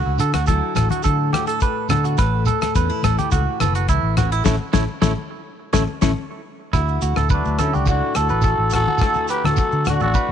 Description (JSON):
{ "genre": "highlife guitar band", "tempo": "106 BPM", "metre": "4/4", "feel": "straight", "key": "D major", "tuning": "A4 = 437 Hz", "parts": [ { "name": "picked steel-string acoustic guitar", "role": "accompaniment", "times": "0.0-10.3 s", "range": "A2 to B4", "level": "-27 LUFS", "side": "left 14 dB", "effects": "none" }, { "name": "clean electric guitar", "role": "arpeggios", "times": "0.0-10.3 s", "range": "E4 to C#5", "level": "-23 LUFS", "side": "right 11 dB", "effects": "tape echo" }, { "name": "fingered electric bass", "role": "bass", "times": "0.0-10.3 s", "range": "F#1 to D3", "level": "-21 LUFS", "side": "equal", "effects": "none" }, { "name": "damped 70s drum kit", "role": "drums", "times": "0.2-10.3 s", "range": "hi-hat, kick drum, rim click, snare drum", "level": "-22 LUFS", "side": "left 2 dB", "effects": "none" }, { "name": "shekere", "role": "percussion", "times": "0.2-10.3 s", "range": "none", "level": "-26 LUFS", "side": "right 5 dB", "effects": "none" }, { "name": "congas", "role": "percussion", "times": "0.3-10.1 s", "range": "none", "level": "-26 LUFS", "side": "left 7 dB", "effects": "none" }, { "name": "trumpet with cup mute", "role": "melody", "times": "7.3-10.3 s", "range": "D4 to B4", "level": "-22 LUFS", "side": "equal", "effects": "none" }, { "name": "breathy alto saxophone", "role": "second line", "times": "7.3-10.3 s", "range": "A3 to G4", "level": "-28 LUFS", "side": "left 12 dB", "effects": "none" } ], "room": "small room ambience", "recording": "1960s-style stereo with parts hard left and right, nothing above 10.9 kHz", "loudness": "-17 LUFS", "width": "side -9 dB against mid", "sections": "0.0-6.7 A section; 6.7-10.3 B section", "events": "band accent 4.5-6.7; drum fill 6.2-6.7", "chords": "0.0 Dadd9; 2.2 A; 6.7 Dadd9" }